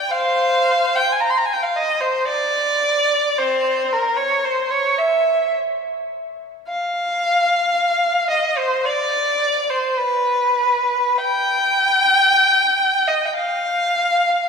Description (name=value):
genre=classical, free, expressive piece for unaccompanied violin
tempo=54 BPM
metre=3/4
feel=uneven beats, rubato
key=C minor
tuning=A4 = 440 Hz
part: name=rich violin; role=solo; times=0.0-14.5 s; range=C4 to C6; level=-16 LUFS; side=equal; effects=none
room=wet church reverb, RT60 3.4 s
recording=minimal, uncompressed stereo recording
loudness=-16 LUFS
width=side -6 dB against mid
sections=0.1-14.5 A section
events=none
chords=none